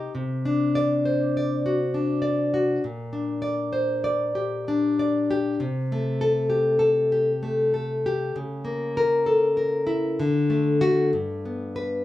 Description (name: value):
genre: romantic piece for solo classical guitar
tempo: 65 BPM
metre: 3/4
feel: rubato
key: G minor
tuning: A4 = 441 Hz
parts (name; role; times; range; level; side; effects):
- nylon-string guitar; solo; 0.0-12.0 s; G2 to Eb5; -22 LUFS; left 1 dB; none
room: light reverb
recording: small room ambience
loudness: -21 LUFS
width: side -14 dB against mid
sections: 0.0-12.0 A section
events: none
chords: 0.1 D7/C; 2.8 Gm/Bb; 5.6 Am7/C; 8.3 C#m6; 10.2 D; 11.2 G